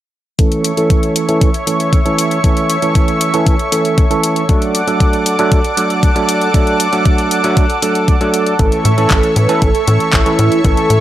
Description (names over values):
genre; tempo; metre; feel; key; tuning
italo disco; 117 BPM; 4/4; straight; A major; A4 = 440 Hz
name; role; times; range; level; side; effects
lush unison pad; sustained chords; 0.4-11.0 s; A4 to D6; -17 LUFS; equal; chorus
bell-like tine electric piano; stabs; 0.4-11.0 s; E3 to A4; -16 LUFS; right 2 dB; medium stereo tremolo, low-pass filter, tape echo
electronic kick drum; drums; 0.4-10.7 s; none; -13 LUFS; left 1 dB; none
house drum kit; drums; 0.4-11.0 s; handclaps, hi-hat; -20 LUFS; left 3 dB; overdrive
mellow synth brass; melody; 8.6-11.0 s; E4 to B4; -17 LUFS; right 1 dB; chorus
tight sequencer bass; bass; 8.6-11.0 s; A1 to A2; -14 LUFS; left 1 dB; none
room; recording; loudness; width
digital ambience; dry, gritty hardware recording; -11 LUFS; side -13 dB against mid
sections
0.4-11.0 A section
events
filter sweep on tine electric piano 0.4-11.0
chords
0.4 A; 4.5 D; 8.6 A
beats
| 0.39 0.90 1.42 1.93 | 2.44 2.95 3.47 3.98 | 4.49 5.00 5.52 6.03 | 6.54 7.06 7.57 8.08 | 8.59 9.11 9.62 10.13 | 10.65